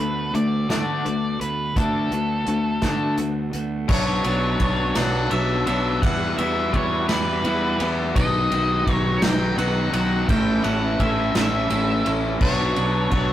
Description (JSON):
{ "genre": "indie rock", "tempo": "56 BPM (dotted quarters)", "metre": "6/8", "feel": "straight", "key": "unclear", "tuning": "A4 = 440 Hz", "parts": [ { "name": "octave-fuzz lead guitar", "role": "melody", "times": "0.0-13.3 s", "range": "A4 to G5", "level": "-26 LUFS", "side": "equal", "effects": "distortion" }, { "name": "overdriven electric guitar", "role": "riff", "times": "0.0-13.3 s", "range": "A2 to E4", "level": "-25 LUFS", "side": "left 4 dB", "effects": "spring reverb" }, { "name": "twelve-string electric guitar", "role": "riff", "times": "0.0-13.3 s", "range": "A2 to C#5", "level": "-28 LUFS", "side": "right 4 dB", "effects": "none" }, { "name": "fuzz fingered electric bass", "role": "bass", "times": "0.0-13.3 s", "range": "A1 to D3", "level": "-26 LUFS", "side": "equal", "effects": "overdrive" }, { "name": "unplugged drum kit", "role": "drums", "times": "0.3-13.3 s", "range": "crash cymbal, hi-hat, kick drum, ride cymbal, snare drum", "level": "-25 LUFS", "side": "equal", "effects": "none" } ], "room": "moderate studio reverb, RT60 0.6 s", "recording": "rough rehearsal-room recording, warm saturation", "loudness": "-19 LUFS", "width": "side -12 dB against mid", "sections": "0.0-3.9 A section; 3.9-13.3 B section", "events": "none", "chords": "0.0 D6; 3.9 Bmadd9; 6.0 Emadd9; 8.2 B; 10.3 A; 12.4 Bmadd9", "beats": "0.70 | 1.76 2.83 | 3.90 4.96 | 6.03 7.09 | 8.15 9.22 | 10.29 11.35 | 12.42" }